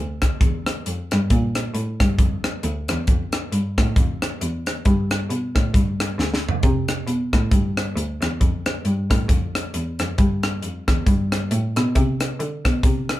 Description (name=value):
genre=uptempo gospel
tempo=135 BPM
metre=4/4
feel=swing 58% on 8ths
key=C major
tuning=A4 = 440 Hz
part: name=rich cello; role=bass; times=0.0-13.2 s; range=D2 to D3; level=-23 LUFS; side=equal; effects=none
part: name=crisp fusion drum kit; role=drums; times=0.2-13.2 s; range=hi-hat, kick drum, rim click, snare drum, toms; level=-20 LUFS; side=equal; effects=none
room=moderate small room reverb, RT60 0.5 s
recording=band playing live in one room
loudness=-19 LUFS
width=side -15 dB against mid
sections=0.0-13.2 A section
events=drum fill 6.2-6.6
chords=none